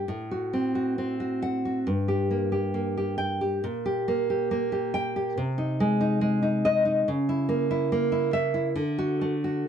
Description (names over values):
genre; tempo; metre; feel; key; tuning
romantic piece for solo classical guitar; 69 BPM; 2/4; uneven beats, rubato; unclear; A4 = 442 Hz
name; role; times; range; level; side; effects
nylon-string guitar; solo; 0.0-9.7 s; G2 to G5; -24 LUFS; equal; none
room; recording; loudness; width
moderate studio reverb, RT60 0.8 s; dark, warm production; -24 LUFS; side -8 dB against mid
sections
0.0-9.7 A section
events
none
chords
0.1 Am6; 1.9 Gm; 3.7 Gm/Bb; 5.4 Ab/C; 7.1 C#m6; 8.8 D